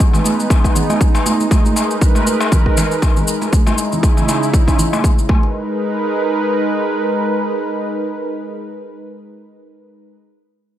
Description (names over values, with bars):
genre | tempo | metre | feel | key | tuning
afro house | 119 BPM | 4/4 | swing 56% on 16ths | G# minor | A4 = 440 Hz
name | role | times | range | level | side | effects
warm analog pad | sustained chords | 0.0-10.2 s | C#3 to B4 | -19 LUFS | right 1 dB | chorus, sidechain pumping
electronic kick drum | drums | 0.0-5.4 s | none | -14 LUFS | equal | overdrive
shaker | drums | 0.0-5.3 s | none | -25 LUFS | left 1 dB | overdrive
congas | percussion | 0.0-5.5 s | none | -21 LUFS | right 3 dB | none
darbuka | percussion | 0.1-5.4 s | none | -24 LUFS | left 5 dB | none
room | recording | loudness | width
light reverb | none | -13 LUFS | side -12 dB against mid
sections
0.0-5.5 A section; 5.5-9.6 B section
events
none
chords
0.0 B6; 1.5 G#m; 3.5 C#m; 5.3 G#m